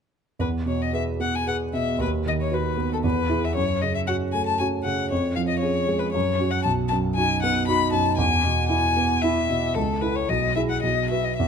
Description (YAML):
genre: quick classical-period movement for piano trio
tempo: 116 BPM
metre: 3/4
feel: rubato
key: E major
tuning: A4 = 440 Hz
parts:
  - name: rich violin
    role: melody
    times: 0.4-11.5 s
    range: A4 to B5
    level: -25 LUFS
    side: left 7 dB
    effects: none
  - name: warm concert grand piano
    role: accompaniment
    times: 0.4-11.5 s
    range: B1 to B4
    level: -23 LUFS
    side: right 2 dB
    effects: none
room: moderate recital hall reverb, RT60 1.7 s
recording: close, detailed microphones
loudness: -21 LUFS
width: side -6 dB against mid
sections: 0.4-11.5 A section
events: none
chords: 0.4 E; 2.0 B/D#; 3.0 E; 3.6 F#m; 5.1 C#/E#; 6.1 F#5; 6.7 B; 8.2 E; 9.8 A/C#; 10.3 E/B; 10.8 B